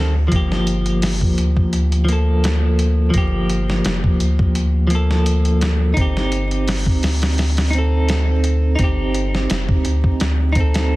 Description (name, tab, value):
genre	trip hop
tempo	85 BPM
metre	4/4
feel	swing 54% on 16ths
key	G minor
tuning	A4 = 441 Hz
part	clean electric guitar	accompaniment	0.0-11.0 s	Eb3 to A4	-21 LUFS	equal	tremolo, tape echo
part	round analog bass	bass	0.0-11.0 s	F1 to D2	-18 LUFS	equal	none
part	dusty soul sampler-style drum kit	drums	0.3-10.9 s	hi-hat, kick drum, snare drum	-21 LUFS	equal	none
room	digital ambience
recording	dense, heavily limited modern master, vinyl crackle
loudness	-15 LUFS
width	side -19 dB against mid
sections	0.0-11.0 A section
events	none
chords	0.3 Gm7; 6.0 Cm/G